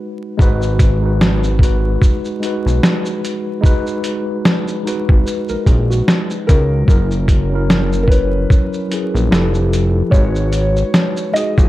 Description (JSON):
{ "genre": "lo-fi hip hop", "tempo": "74 BPM", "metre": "4/4", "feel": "swing 58% on 16ths", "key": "G# minor", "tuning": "A4 = 441 Hz", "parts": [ { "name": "mellow tine electric piano", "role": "accompaniment", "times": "0.0-11.7 s", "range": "F3 to C#5", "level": "-20 LUFS", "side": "left 1 dB", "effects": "medium stereo tremolo" }, { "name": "fat analog bass", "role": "bass", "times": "0.4-11.7 s", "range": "F1 to C#2", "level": "-16 LUFS", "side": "equal", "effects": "none" }, { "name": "boom bap sampler-style drum kit", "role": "drums", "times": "0.4-11.7 s", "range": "hi-hat, kick drum, shaker, snare drum", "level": "-14 LUFS", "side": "equal", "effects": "none" }, { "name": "mellow tine electric piano", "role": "second line", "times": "5.3-6.8 s", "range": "F#4 to B4", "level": "-27 LUFS", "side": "right 2 dB", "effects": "medium stereo tremolo, tape echo" }, { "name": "felt-muted upright piano", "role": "melody", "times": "6.5-11.7 s", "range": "A#4 to D#5", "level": "-22 LUFS", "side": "left 1 dB", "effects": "tape echo" } ], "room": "little or no reverb", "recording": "dark, warm production, vinyl crackle", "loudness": "-13 LUFS", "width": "side -16 dB against mid", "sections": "0.0-11.7 A section", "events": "break 0.0-0.4", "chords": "0.0 G#m7; 6.9 F#7; 9.3 Fmaj9; 10.1 G#m11", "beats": "| 0.39 1.20 2.02 2.83 | 3.64 4.45 5.26 6.07 | 6.88 7.69 8.50 9.31 | 10.12 10.93" }